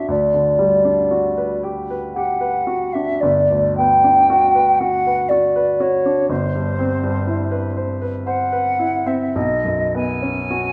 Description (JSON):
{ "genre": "classical, impressionist duo for flute and grand piano", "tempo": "58 BPM", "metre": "3/4", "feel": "uneven beats, rubato", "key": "unclear", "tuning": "A4 = 438 Hz", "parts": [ { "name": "mellow hollow silver concert flute", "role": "melody", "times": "0.0-10.7 s", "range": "C5 to G#5", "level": "-19 LUFS", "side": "equal", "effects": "none" }, { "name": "warm baby grand piano", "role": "accompaniment", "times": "0.0-10.7 s", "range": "G1 to C#5", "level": "-24 LUFS", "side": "equal", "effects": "none" } ], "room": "wet recital hall reverb, RT60 1.5 s", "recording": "none", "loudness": "-18 LUFS", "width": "mono", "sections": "0.0-10.7 A section", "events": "none", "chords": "0.1 Gmaj7/D; 3.2 Gmaj7; 6.3 Cmaj7/G; 9.4 Bsus2", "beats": "| 0.10 1.11 2.16 | 3.22 4.29 5.30 | 6.30 7.28 8.27 | 9.35 10.50" }